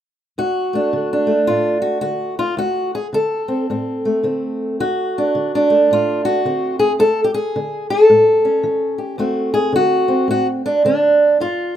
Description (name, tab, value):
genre	acoustic country blues, solo or duo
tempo	109 BPM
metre	4/4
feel	swing 62% on 8ths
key	D mixolydian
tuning	A4 = 440 Hz
part	fingerpicked steel-string acoustic guitar	solo	0.4-11.8 s	D2 to A4	-15 LUFS	equal	none
room	studio reverb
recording	rough home demo mix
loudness	-15 LUFS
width	side -10 dB against mid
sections	0.4-9.2 A section; 9.2-11.8 B section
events	none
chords	0.4 D7; 8.1 A7; 9.2 D7